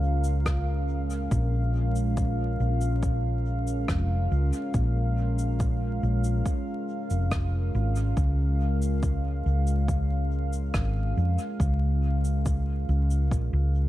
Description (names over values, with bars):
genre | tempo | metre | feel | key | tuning
ambient dub | 70 BPM | 4/4 | straight | Bb minor | A4 = 440 Hz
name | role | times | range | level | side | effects
deep dark ambient pad | sustained chords | 0.0-13.9 s | Ab3 to F5 | -32 LUFS | equal | chorus, built-in reverb
hollow-body short-scale fingered electric bass | bass | 0.0-13.9 s | F1 to F2 | -25 LUFS | equal | tube saturation
cabasa and rim click | drums | 0.2-13.5 s | none | -38 LUFS | left 1 dB | dub echo
electronic kick drum | drums | 0.5-13.5 s | none | -29 LUFS | equal | overdrive
room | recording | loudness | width
small room ambience | dark, warm production, vinyl crackle | -24 LUFS | side -15 dB against mid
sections
0.0-13.9 A section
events
none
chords
0.0 Db6; 1.3 Bbm7; 8.2 Db6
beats
0.46 | 1.31 2.17 3.03 3.89 | 4.74 5.60 6.46 7.32 | 8.17 9.03 9.89 10.74 | 11.60 12.46 13.31